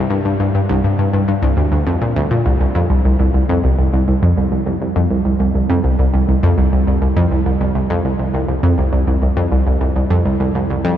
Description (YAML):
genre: ambient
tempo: 102 BPM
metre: 4/4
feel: straight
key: unclear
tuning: A4 = 440 Hz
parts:
  - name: analog pluck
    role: solo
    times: 0.0-10.9 s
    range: C2 to Bb2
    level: -13 LUFS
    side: equal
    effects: chorus, analog delay
room: wet huge ambient reverb, RT60 7.2 s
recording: dark, warm production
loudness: -14 LUFS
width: side -10 dB against mid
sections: 0.0-2.5 A section; 2.5-11.0 B section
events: none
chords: none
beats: | 0.11 0.69 1.28 1.87 | 2.46 3.05 3.64 4.22 | 4.81 5.40 5.99 6.58 | 7.17 7.75 8.34 8.93 | 9.52 10.11 10.69